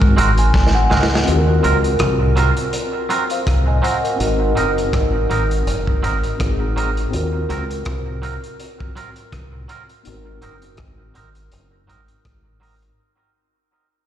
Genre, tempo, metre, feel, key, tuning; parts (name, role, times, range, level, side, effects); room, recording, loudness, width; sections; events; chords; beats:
lovers rock reggae; 82 BPM; 4/4; swing 56% on 16ths; A4 = 440 Hz
mellow tine electric piano; accompaniment; 0.0-13.0 s; Cb4 to C6; -22 LUFS; left 1 dB; medium stereo tremolo, dub echo, slapback echo
deep dub fingered electric bass; bass; 0.0-12.9 s; Gb1 to Ab2; -18 LUFS; equal
crunchy breakbeat drum kit; drums; 0.0-13.0 s; hi-hat, kick drum, rim click, snare drum; -22 LUFS; equal
twangy electric guitar; stabs; 0.2-12.7 s; Gb3 to Bb4; -24 LUFS; right 5 dB; dub echo, slapback echo
light reverb, small room reverb; live gig heard through the venue's PA, recital hall reverb; -15 LUFS; side -10 dB against mid
0.0-13.0 A section
fade-out 0.0-13.0; tine electric piano fill 0.0-1.3; drum fill 0.5-1.3
0.0 Ab9; 1.3 Ebm69; 4.2 Ab9; 7.1 Ebm69 (rootless); 10.1 Ab9
0.54 | 1.28 2.01 2.74 3.47 | 4.20 4.94 5.67 6.40 | 7.13 7.86 8.59 9.33 | 10.06 10.79 11.52 12.25